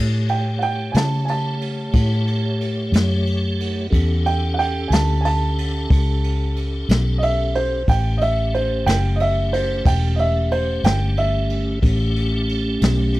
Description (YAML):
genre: slow blues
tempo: 61 BPM (dotted quarters)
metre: 12/8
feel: straight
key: A mixolydian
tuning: A4 = 441 Hz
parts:
  - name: tonewheel organ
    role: sustained chords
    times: 0.0-13.2 s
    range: A3 to C#5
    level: -26 LUFS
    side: equal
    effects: slow rotary speaker, chorus vibrato
  - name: vintage muted fingered electric bass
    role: bass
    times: 0.0-13.2 s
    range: E1 to C#3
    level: -20 LUFS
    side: equal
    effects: none
  - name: dark upright piano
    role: second line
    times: 0.3-12.5 s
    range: C5 to A5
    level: -23 LUFS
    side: right 2 dB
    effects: none
  - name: jazz brush drum kit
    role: drums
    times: 0.3-13.2 s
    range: kick drum, ride cymbal, snare drum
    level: -24 LUFS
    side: equal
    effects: none
room: studio reverb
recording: dry, close 1970s-style studio recording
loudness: -17 LUFS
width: side -18 dB against mid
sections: 0.0-13.2 A section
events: upright piano solo 0.0-13.2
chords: 0.0 A7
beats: 0.96 1.95 2.94 | 3.93 4.92 5.90 6.89 | 7.88 8.87 9.86 10.84 | 11.83 12.82